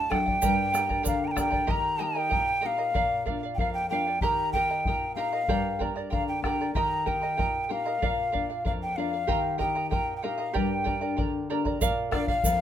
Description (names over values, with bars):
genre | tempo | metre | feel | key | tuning
andean folk, Andean ensemble | 95 BPM | 2/4 | straight | unclear | A4 = 440 Hz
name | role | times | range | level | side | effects
breathy hollow quena | melody | 0.0-12.6 s | D5 to Bb5 | -27 LUFS | left 1 dB | none
charango | accompaniment | 0.0-12.6 s | G4 to Bb5 | -32 LUFS | right 6 dB | none
nylon-string guitar | accompaniment | 0.0-12.6 s | F2 to G4 | -33 LUFS | left 4 dB | none
bombo | percussion | 0.1-12.6 s | none | -32 LUFS | left 1 dB | none
egg shaker | percussion | 0.4-1.5, 11.8-12.6 s | none | -34 LUFS | right 5 dB | none
room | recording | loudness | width
moderate studio reverb, RT60 0.6 s | minimal, uncompressed stereo recording | -25 LUFS | side -10 dB against mid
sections
0.0-1.7 A section; 1.7-11.8 B section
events
none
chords
0.4 Gm; 1.7 Eb; 3.0 Bb; 4.2 Eb; 5.5 Gm; 6.8 Eb; 8.0 Bb; 9.3 Eb; 10.6 Gm; 11.8 Bb